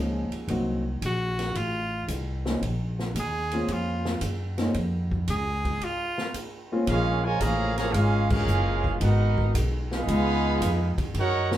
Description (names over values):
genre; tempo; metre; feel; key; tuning
jazz, big band swing; 113 BPM; 4/4; swing 69% on 8ths; Bb minor; A4 = 440 Hz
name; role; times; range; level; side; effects
warm concert grand piano; accompaniment; 0.0-6.9 s; F3 to Ab4; -29 LUFS; left 1 dB; none
upright bass; bass; 0.0-11.6 s; Gb1 to Gb2; -26 LUFS; equal; none
swinging big-band drum kit; drums; 0.3-11.6 s; crash cymbal, hi-hat, kick drum, ride cymbal, snare drum; -34 LUFS; equal; none
edgy tenor saxophone; melody; 1.1-6.4 s; F4 to Ab4; -30 LUFS; right 1 dB; none
bright trumpet section; melody; 6.9-11.6 s; Db4 to Bb5; -28 LUFS; right 3 dB; none
dark trombone section; second line; 6.9-11.6 s; Db3 to Gb4; -30 LUFS; right 2 dB; none
room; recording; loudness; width
wet club reverb, RT60 0.7 s; heard from further back in the room; -24 LUFS; side -12 dB against mid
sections
0.0-6.9 A section; 6.9-11.6 B section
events
tenor saxophone solo 0.0-6.9; break 5.8-6.9; band accent 8.2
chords
0.5 Cm7b5; 1.6 F7b13; 2.6 Bbm7; 9.0 Abm9; 10.1 Db9